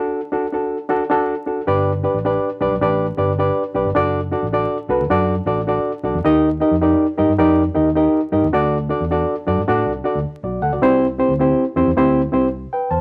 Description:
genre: uptempo 1960s-style soul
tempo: 105 BPM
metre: 4/4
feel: swing 63% on 8ths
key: G major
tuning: A4 = 440 Hz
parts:
  - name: reed electric piano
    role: accompaniment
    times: 0.0-13.0 s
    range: C4 to A5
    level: -19 LUFS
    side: equal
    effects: none
  - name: vintage muted fingered electric bass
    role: bass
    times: 1.7-13.0 s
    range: F#1 to A2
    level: -26 LUFS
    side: equal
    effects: none
room: wet studio reverb, RT60 0.7 s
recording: vinyl crackle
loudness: -18 LUFS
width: mono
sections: 0.0-1.7 A section; 1.7-13.0 B section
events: break 0.0-1.7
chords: 0.0 D; 1.7 G; 4.0 D/F#; 6.2 Eb; 8.5 D; 10.8 C

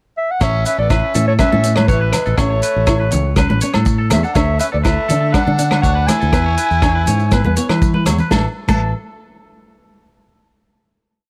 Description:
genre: highlife guitar band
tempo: 121 BPM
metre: 4/4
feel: straight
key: A major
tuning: A4 = 441 Hz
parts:
  - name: dark clarinet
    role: melody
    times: 0.2-8.9 s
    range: B4 to A5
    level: -22 LUFS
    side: equal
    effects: none
  - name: raspy tenor saxophone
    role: second line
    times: 0.4-8.9 s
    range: E3 to E4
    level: -30 LUFS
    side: equal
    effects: none
  - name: fingerpicked steel-string acoustic guitar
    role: accompaniment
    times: 0.4-8.8 s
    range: G#3 to E4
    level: -25 LUFS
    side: equal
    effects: none
  - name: twangy electric guitar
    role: arpeggios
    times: 0.4-8.9 s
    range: A4 to C#5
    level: -28 LUFS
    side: equal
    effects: tape echo
  - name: fingered electric bass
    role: bass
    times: 0.4-8.9 s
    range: A1 to E3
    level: -20 LUFS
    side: equal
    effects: none
  - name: warm soul drum kit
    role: drums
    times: 0.4-8.8 s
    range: crash cymbal, hi-hat, kick drum, rim click, snare drum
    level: -21 LUFS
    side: equal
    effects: none
  - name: agogo bells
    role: percussion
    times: 0.4-8.8 s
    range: none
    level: -30 LUFS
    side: equal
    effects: none
  - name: maracas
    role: percussion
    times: 0.4-8.9 s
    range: none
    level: -35 LUFS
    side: equal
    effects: none
  - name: congas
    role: percussion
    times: 1.1-8.9 s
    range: none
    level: -24 LUFS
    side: equal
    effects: none
room: little or no reverb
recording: none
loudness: -15 LUFS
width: mono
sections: 0.0-0.4 pickup bar; 0.4-8.3 A section; 8.3-10.3 final chord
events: drum fill 7.7-8.3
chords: 0.4 A; 4.4 D; 6.3 E; 8.3 A5

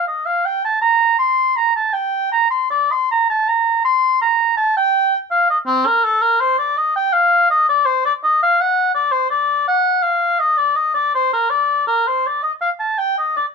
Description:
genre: classical, baroque-style fantasia for unaccompanied oboe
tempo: 81 BPM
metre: 4/4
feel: rubato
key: Bb major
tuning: A4 = 438 Hz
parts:
  - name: warm oboe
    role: solo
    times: 0.0-13.5 s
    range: C4 to C6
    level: -14 LUFS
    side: equal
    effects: none
room: light reverb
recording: minimal, uncompressed stereo recording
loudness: -14 LUFS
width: side -5 dB against mid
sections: 0.0-13.5 A section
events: none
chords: none

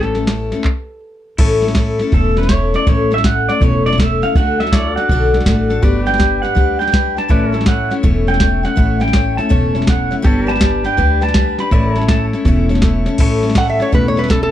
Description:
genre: honky-tonk and classic country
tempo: 163 BPM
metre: 4/4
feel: swing 66% on 8ths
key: A mixolydian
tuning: A4 = 441 Hz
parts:
  - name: lap resonator guitar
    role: melody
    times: 0.0-1.0, 13.6-14.5 s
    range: A4 to F#5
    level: -19 LUFS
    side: right 1 dB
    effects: none
  - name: picked steel-string acoustic guitar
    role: accompaniment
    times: 0.0-14.5 s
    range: A2 to C#5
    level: -19 LUFS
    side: left 4 dB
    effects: none
  - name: upright bass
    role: bass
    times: 0.0-14.5 s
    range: E1 to D2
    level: -18 LUFS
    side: equal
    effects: none
  - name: soft vintage rhythm box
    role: drums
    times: 0.0-14.4 s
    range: crash cymbal, handclaps, hi-hat, kick drum, snare drum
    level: -16 LUFS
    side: equal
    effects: none
  - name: pedal steel guitar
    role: sustained chords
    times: 1.4-14.5 s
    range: E4 to D5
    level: -26 LUFS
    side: equal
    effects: none
  - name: pedal steel guitar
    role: second line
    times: 2.1-12.2 s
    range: A4 to B5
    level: -19 LUFS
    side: right 3 dB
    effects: none
room: light reverb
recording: dark, warm production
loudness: -12 LUFS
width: side -12 dB against mid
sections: 0.0-1.4 A section; 1.4-13.2 B section; 13.2-14.5 B section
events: stop 0.7-1.4; pedal steel guitar solo 1.4-13.2; resonator guitar played with a steel bar solo 13.2-14.5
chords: 0.0 A; 4.4 D; 5.8 G; 7.3 A; 10.2 G; 11.7 A

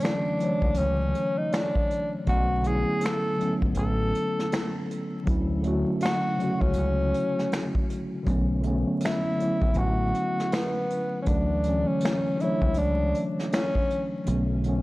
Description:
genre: lo-fi hip hop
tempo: 80 BPM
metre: 4/4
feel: swing 60% on 16ths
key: unclear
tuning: A4 = 438 Hz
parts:
  - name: breathy tenor saxophone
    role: melody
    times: 0.0-14.1 s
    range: B3 to A4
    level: -29 LUFS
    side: left 1 dB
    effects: low-pass filter
  - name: mellow tine electric piano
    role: accompaniment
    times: 0.0-14.8 s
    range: C#3 to C#5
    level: -27 LUFS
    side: equal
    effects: medium stereo tremolo, cassette tape, low-pass filter
  - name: vintage brush drum kit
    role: drums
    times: 0.0-14.8 s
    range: finger snaps, hi-hat, kick drum, snare drum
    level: -29 LUFS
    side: equal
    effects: none
  - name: deep dub fingered electric bass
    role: bass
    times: 0.6-14.8 s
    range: A1 to D2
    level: -27 LUFS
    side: equal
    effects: none
room: light reverb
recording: dry, gritty hardware recording, transformer saturation, vinyl crackle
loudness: -23 LUFS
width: side -19 dB against mid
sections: 0.0-14.8 A section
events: kick muted 14.3-14.8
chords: 0.0 Dmaj7; 2.3 Bm7; 5.3 Dmaj7; 8.3 Bm7; 11.3 Dmaj7; 14.3 Bm7

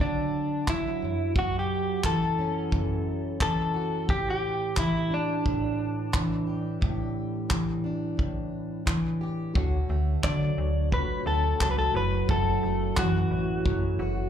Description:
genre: acoustic pop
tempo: 88 BPM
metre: 4/4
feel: swing 60% on 16ths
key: D major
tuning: A4 = 440 Hz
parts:
  - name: direct-recorded clean electric guitar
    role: melody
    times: 0.0-14.3 s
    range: D4 to D5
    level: -30 LUFS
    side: left 1 dB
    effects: plate reverb, slapback echo
  - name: fingerpicked plugged-in steel-string acoustic guitar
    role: accompaniment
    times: 0.0-14.3 s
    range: F#2 to G4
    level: -29 LUFS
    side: right 1 dB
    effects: double-tracked left and right, plate reverb
  - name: natural country drum kit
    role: drums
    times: 0.7-13.8 s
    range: handclaps, kick drum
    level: -29 LUFS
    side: equal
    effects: none
  - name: reed electric piano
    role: accompaniment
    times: 9.5-14.3 s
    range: A3 to C#5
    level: -37 LUFS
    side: left 5 dB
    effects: fast tremolo, plate reverb, slapback echo
  - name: slap-like FM bass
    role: bass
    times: 9.6-14.3 s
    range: F#1 to D3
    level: -27 LUFS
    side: equal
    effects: none
room: moderate club reverb, RT60 0.8 s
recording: live gig heard through the venue's PA, club reverb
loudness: -25 LUFS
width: side -9 dB against mid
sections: 0.0-9.6 A section; 9.6-14.3 B section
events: none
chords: 0.0 D; 1.0 F#m7; 4.1 A7sus4; 9.6 Dmaj7; 11.9 F#m7

